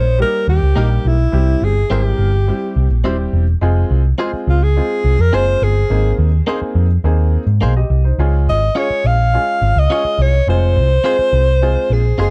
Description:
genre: soul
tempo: 105 BPM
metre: 4/4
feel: straight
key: unclear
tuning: A4 = 441 Hz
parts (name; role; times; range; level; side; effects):
- warm alto saxophone; melody; 0.0-12.3 s; Fb4 to F5; -20 LUFS; equal; tape echo
- hollow-body short-scale picked electric bass; bass; 0.0-12.3 s; Eb1 to Ab2; -16 LUFS; equal; none
- warm upright piano; accompaniment; 0.2-12.3 s; G3 to F5; -26 LUFS; equal; none
- direct-recorded clean electric guitar; stabs; 0.8-12.3 s; Bb3 to Db5; -24 LUFS; equal; none
room: little or no reverb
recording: dark, warm production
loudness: -15 LUFS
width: mono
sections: 0.0-12.3 A section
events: none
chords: 0.0 Eb; 1.3 C; 3.6 Fm; 5.9 Abadd9; 8.2 Db; 10.5 Fm

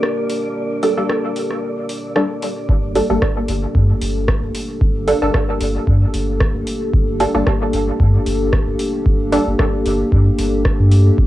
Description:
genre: dub techno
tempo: 113 BPM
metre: 4/4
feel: swing 55% on 16ths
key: G minor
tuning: A4 = 438 Hz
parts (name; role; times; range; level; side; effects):
- dark analog pad; sustained chords; 0.0-11.3 s; Bb3 to C5; -22 LUFS; left 1 dB; chorus, sidechain pumping, cassette tape
- booming analog drum machine; drums; 0.0-11.0 s; hi-hat, rim click; -25 LUFS; equal; cassette tape
- wind-like tuned noise texture; texture; 0.0-2.7 s; D5; -31 LUFS; right 3 dB; built-in reverb, sidechain pumping, cassette tape
- filtered dub chord stab; stabs; 0.8-9.4 s; G3 to A4; -20 LUFS; right 1 dB; chorus, phaser, sidechain pumping, cassette tape, dub echo
- soft dub sub bass; bass; 2.7-11.3 s; G1 to G2; -17 LUFS; equal; sidechain pumping
- electronic kick drum; drums; 2.7-11.3 s; none; -18 LUFS; equal; cassette tape
room: light reverb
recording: home recording on cassette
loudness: -15 LUFS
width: side -15 dB against mid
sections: 0.0-2.7 A section; 2.7-11.3 B section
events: filter sweep on synth stab 0.0-2.7, 2.7-11.3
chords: 0.0 Gmadd9

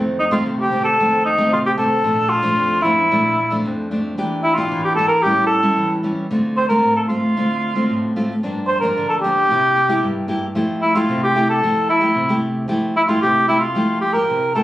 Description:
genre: samba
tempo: 113 BPM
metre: 4/4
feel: straight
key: F major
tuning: A4 = 439 Hz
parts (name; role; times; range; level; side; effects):
- nylon-string guitar; accompaniment; 0.0-14.6 s; F2 to G4; -20 LUFS; equal; none
- mellow cor anglais; melody; 0.2-14.6 s; Eb4 to C5; -16 LUFS; equal; none
room: moderate studio ambience, RT60 0.5 s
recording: recorded on a phone in the room, club reverb, compression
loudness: -15 LUFS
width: side -15 dB against mid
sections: 0.0-14.6 A section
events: none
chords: 0.0 F7; 2.0 Bbmaj7; 4.2 Em7b5; 5.2 A7; 6.3 Dm7; 8.4 Gm7; 9.5 C7; 10.6 Fmaj9

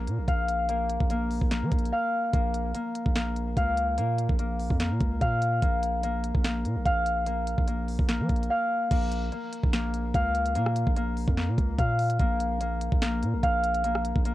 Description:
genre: hip hop, trap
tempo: 146 BPM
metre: 4/4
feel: half-time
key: Bb minor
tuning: A4 = 440 Hz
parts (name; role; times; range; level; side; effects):
- concert harp; arpeggios; 0.0-14.3 s; Bb3 to F5; -28 LUFS; left 1 dB; low-pass filter, tape echo
- long sustained 808-style bass; bass; 0.0-14.3 s; Bb1 to F3; -29 LUFS; equal; none
- trap drum kit; drums; 0.1-14.3 s; crash cymbal, hi-hat, kick drum, rim click, snare drum; -28 LUFS; equal; none
room: little or no reverb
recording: home recording on cassette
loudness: -24 LUFS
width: side -15 dB against mid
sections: 0.0-8.9 A section; 8.9-14.3 B section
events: silent gap 1.9-2.3; drums muted 8.5-8.9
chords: 0.0 Bb5; 2.3 Bbm; 5.6 Bb5; 8.9 Bbm; 12.2 Bb5

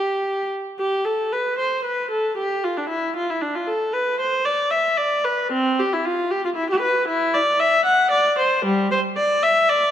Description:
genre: classical, baroque-style suite movement for unaccompanied viola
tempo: 77 BPM (dotted quarters)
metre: 6/8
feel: rubato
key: unclear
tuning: A4 = 439 Hz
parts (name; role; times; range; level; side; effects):
- warm viola; solo; 0.0-9.9 s; G3 to F#5; -18 LUFS; equal; none
room: moderate concert hall reverb, RT60 1.8 s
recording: none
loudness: -18 LUFS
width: side -10 dB against mid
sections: 0.8-9.9 A section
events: none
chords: none

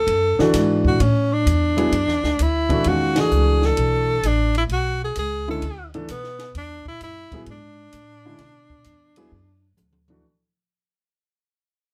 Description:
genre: modal jazz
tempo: 130 BPM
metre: 4/4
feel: swing 68% on 8ths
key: E mixolydian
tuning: A4 = 444 Hz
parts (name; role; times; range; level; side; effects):
- warm tenor saxophone; melody; 0.0-9.8 s; B3 to A4; -25 LUFS; equal; none
- upright bass; bass; 0.0-10.2 s; A1 to B2; -24 LUFS; equal; none
- compact cocktail drum kit; drums; 0.1-10.2 s; hi-hat, kick drum, ride cymbal, snare drum, toms; -29 LUFS; equal; none
- warm concert grand piano; accompaniment; 0.4-10.2 s; D3 to A4; -24 LUFS; equal; none
room: moderate small room reverb, RT60 0.6 s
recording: band playing live in one room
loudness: -20 LUFS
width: mono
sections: 0.0-10.2 A section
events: fade-out 0.0-10.2; band accent 3.1; drum fill 9.8-10.2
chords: 0.0 E9sus4

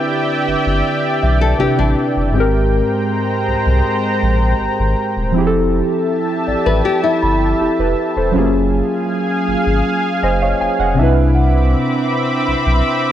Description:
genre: R&B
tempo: 80 BPM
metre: 4/4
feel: straight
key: unclear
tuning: A4 = 437 Hz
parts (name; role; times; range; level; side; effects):
- muted felt-like synth keys; accompaniment; 0.0-13.1 s; Ab2 to Ab5; -17 LUFS; right 1 dB; chorus
- lush unison pad; sustained chords; 0.0-13.1 s; Ab3 to D6; -20 LUFS; equal; chorus
- celesta; texture; 0.0-13.1 s; D5 to B5; -27 LUFS; right 2 dB; ping-pong delay
- warm sub bass; bass; 0.5-12.8 s; Eb1 to C2; -17 LUFS; equal; none
- nylon-string guitar; arpeggios; 1.4-8.1 s; D4 to B4; -19 LUFS; left 5 dB; ping-pong delay
room: light reverb, small room reverb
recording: worn, warbling old tape, cassette tape, warbly pitch drift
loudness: -13 LUFS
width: side -11 dB against mid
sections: 0.0-13.1 A section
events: synth keys fill 10.2-11.3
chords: 0.0 Cmaj9; 2.4 Abmaj9; 5.3 Fmaj9; 8.3 Gbmaj9; 11.0 Cmaj9

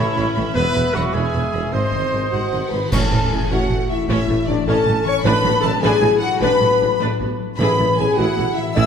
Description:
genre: cinematic, heroic adventure film score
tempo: 102 BPM (dotted quarters)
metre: 6/8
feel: straight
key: unclear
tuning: A4 = 443 Hz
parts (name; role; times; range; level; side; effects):
- warm symphonic violin section; melody; 0.0-8.9 s; D5 to E6; -29 LUFS; left 4 dB; none
- mellow cor anglais; second line; 0.0-2.7 s; C#5 to E5; -30 LUFS; right 2 dB; none
- mellow hollow flute section; second line; 0.0-8.9 s; D5 to E6; -26 LUFS; right 3 dB; none
- warm clarinet; second line; 0.0-8.9 s; A3 to B#4; -28 LUFS; equal; none
- warm symphonic violin section; second line; 0.0-8.9 s; C#5 to E6; -30 LUFS; left 2 dB; none
- rich symphonic viola section; accompaniment; 0.0-8.9 s; E3 to C#5; -28 LUFS; right 2 dB; none
- dark French horn section; sustained chords; 0.0-8.9 s; E3 to E5; -21 LUFS; left 4 dB; none
- concert harp; arpeggios; 0.0-8.9 s; E2 to B5; -28 LUFS; left 9 dB; none
- clear trumpet; stabs; 0.0-2.7 s; E4 to B#4; -27 LUFS; right 3 dB; none
- rich symphonic cello section; bass; 0.0-8.8 s; E2 to A2; -26 LUFS; right 3 dB; none
- warm chamber double bass section; bass; 0.0-8.8 s; E1 to A1; -26 LUFS; right 3 dB; none
- warm tuba; bass; 0.0-8.8 s; E1 to A1; -28 LUFS; right 4 dB; none
- cymbal swell, clash cymbals and concert bass drum; percussion; 0.6-3.7 s; none; -27 LUFS; equal; none
- timpani; percussion; 2.9-8.1 s; A2; -27 LUFS; right 1 dB; none
room: wet concert hall reverb, RT60 2.2 s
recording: none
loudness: -16 LUFS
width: side -7 dB against mid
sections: 0.0-2.9 A section; 2.9-8.9 B section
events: band accent 2.9-3.3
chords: 0.0 Aadd9; 0.6 E; 1.7 G#; 2.9 A; 5.2 Bm/A; 7.6 E/A

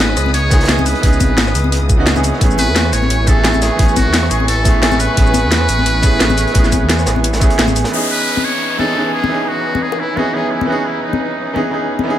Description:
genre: liquid drum and bass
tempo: 174 BPM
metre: 4/4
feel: swing 54% on 16ths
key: C# minor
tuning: A4 = 439 Hz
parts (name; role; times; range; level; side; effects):
- trumpet with metal mute; melody; 0.0-11.7 s; D#4 to C#5; -21 LUFS; equal; tape echo
- bright baby grand piano; accompaniment; 0.0-12.2 s; E3 to G#4; -19 LUFS; right 2 dB; none
- warm studio string section; sustained chords; 0.0-12.2 s; E3 to D#6; -24 LUFS; left 1 dB; sidechain pumping
- swelling detuned saw bass; bass; 0.0-7.8 s; G#1 to E2; -17 LUFS; equal; none
- crunchy breakbeat drum kit; drums; 0.0-7.9 s; hi-hat, snare drum; -26 LUFS; equal; none
- drum and bass drum kit; drums; 0.0-12.1 s; hi-hat, rim click, shaker, snare drum; -17 LUFS; left 1 dB; low-pass filter on hats, low-pass filter on snare, low-pass filter on perc, low-pass filter on room
- congas and bongos; percussion; 0.3-12.1 s; none; -22 LUFS; left 5 dB; none
- electronic kick drum; drums; 0.5-7.5 s; none; -13 LUFS; equal; none
- downlifter; sound effects; 7.9-10.7 s; none; -23 LUFS; left 1 dB; none
room: light reverb, small room ambience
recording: none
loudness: -12 LUFS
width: side -11 dB against mid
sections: 0.0-7.9 A section; 7.9-12.2 B section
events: none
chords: 0.0 C#m9; 2.4 Amaj9; 7.9 C#m9

